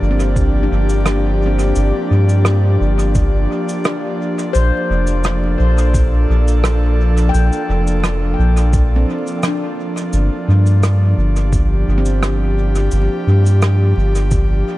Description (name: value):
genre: ambient dub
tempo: 86 BPM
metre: 4/4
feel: swing 54% on 16ths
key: G minor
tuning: A4 = 440 Hz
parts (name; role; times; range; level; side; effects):
- airy breathy pad; sustained chords; 0.0-14.8 s; F3 to D5; -20 LUFS; equal; chorus
- soft dub sub bass; bass; 0.0-14.6 s; F1 to G2; -14 LUFS; equal; none
- handpan; arpeggios; 0.1-14.7 s; C4 to G5; -26 LUFS; left 2 dB; tape echo
- cabasa and rim click; drums; 0.2-14.5 s; none; -24 LUFS; right 1 dB; dub echo
- electronic kick drum; drums; 0.4-14.5 s; none; -18 LUFS; equal; none
room: small room ambience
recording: echo-heavy mix, vinyl crackle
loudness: -13 LUFS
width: side -17 dB against mid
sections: 0.0-14.8 A section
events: none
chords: 0.0 Gm7; 4.5 Bbmaj7; 10.1 Gm7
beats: 0.36 1.06 | 1.76 2.46 3.15 3.85 | 4.55 5.25 5.95 6.64 | 7.34 8.04 8.73 9.43 | 10.13 10.83 11.53 12.22 | 12.92 13.62 14.32